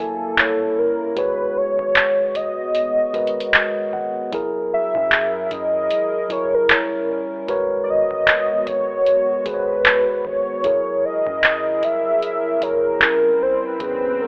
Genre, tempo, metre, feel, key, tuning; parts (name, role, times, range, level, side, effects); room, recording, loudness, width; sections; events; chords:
contemporary R&B; 76 BPM; 4/4; swing 58% on 16ths; G# minor; A4 = 441 Hz
warm velvety synth lead; melody; 0.0-14.3 s; A4 to E5; -22 LUFS; equal; chorus
mellow tine electric piano; accompaniment; 0.0-14.3 s; G#2 to G#5; -27 LUFS; equal
hollow soft pad; sustained chords; 0.0-14.3 s; F#3 to G#5; -33 LUFS; equal; chorus
soft 808-style bass; bass; 0.0-14.3 s; F#1 to F#2; -47 LUFS; equal
booming analog drum machine; drums; 0.4-14.0 s; handclaps, hi-hat, kick drum; -18 LUFS; equal
swell; sound effects; 12.6-14.3 s; -37 LUFS; equal
little or no reverb; dry, gritty hardware recording, telephone sound; -19 LUFS; mono
0.0-14.3 A section
tine electric piano fill 3.1-4.3; swell 12.6-14.3
0.4 Gdim7; 1.2 G#m11; 4.3 F#9; 6.7 Gdim7; 7.5 G#m11; 10.6 F#9; 13.0 Gdim7